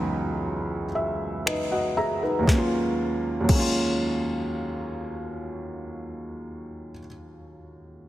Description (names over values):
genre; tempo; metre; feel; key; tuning
contemporary R&B; 59 BPM; 4/4; straight; Eb minor; A4 = 440 Hz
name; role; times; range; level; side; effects
felt-muted upright piano; accompaniment; 0.0-8.1 s; Db2 to Bb5; -26 LUFS; equal; none
smooth R&B drum kit; drums; 1.5-3.8 s; crash cymbal, finger snaps, kick drum, snare drum; -24 LUFS; left 1 dB; overdrive, soft clipping on snare
room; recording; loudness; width
light reverb, digital ambience; dense, heavily limited modern master; -24 LUFS; side -14 dB against mid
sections
0.0-2.5 A section; 2.5-6.5 B section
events
felt piano fill 0.4-2.5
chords
0.0 Dbm11; 2.5 Ebm11